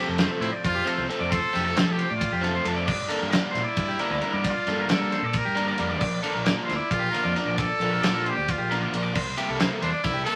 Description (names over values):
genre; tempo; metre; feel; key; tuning
math rock and midwest emo; 268 BPM (eighths); 7/8; straight; F major; A4 = 441 Hz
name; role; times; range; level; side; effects
twangy electric guitar; accompaniment; 0.0-1.3 s; F2 to C4; -39 LUFS; equal; none
electric guitar through a small old amp; arpeggios; 0.0-10.3 s; G4 to D5; -32 LUFS; equal; none
overdriven electric guitar; riff; 0.0-10.4 s; C3 to E4; -32 LUFS; equal; none
growling fingered electric bass; bass; 0.1-10.2 s; Bb1 to G3; -33 LUFS; equal; overdrive
modern studio drum kit; drums; 0.2-10.4 s; crash cymbal, kick drum, ride cymbal, snare drum; -31 LUFS; equal; none
bright trumpet; melody; 0.4-10.4 s; D4 to Bb4; -30 LUFS; equal; none
room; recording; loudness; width
moderate studio reverb, RT60 0.8 s; vinyl crackle; -25 LUFS; mono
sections
0.0-10.4 A section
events
none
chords
0.0 F6; 2.9 Gm; 6.0 Bb; 9.1 C7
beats
0.18 0.41 0.63 0.85 1.08 | 1.30 1.53 1.75 1.98 2.20 2.42 2.65 | 2.87 3.10 3.32 3.54 3.77 3.99 4.22 | 4.44 4.66 4.89 5.11 5.34 5.56 5.78 | 6.01 6.23 6.46 6.68 6.90 7.13 7.35 | 7.58 7.80 8.02 8.25 8.47 8.70 8.92 | 9.15 9.37 9.60 9.82 10.04 10.27